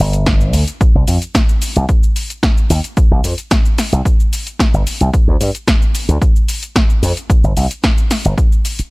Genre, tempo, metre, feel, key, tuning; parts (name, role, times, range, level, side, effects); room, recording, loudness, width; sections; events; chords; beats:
nu-disco, nu disco; 111 BPM; 4/4; straight; A4 = 440 Hz
slap bass with an envelope filter; bass; 0.0-8.8 s; G1 to G2; -14 LUFS; equal; sidechain pumping
house drum kit; drums; 0.1-8.9 s; hi-hat, shaker, snare drum; -19 LUFS; equal
electronic kick drum; drums; 0.3-8.5 s; -13 LUFS; equal
little or no reverb; -12 LUFS; side -26 dB against mid
0.0-8.9 A section
0.27 | 0.81 1.35 1.89 2.43 | 2.97 3.51 4.05 4.59 | 5.13 5.68 6.22 6.76 | 7.30 7.84 8.38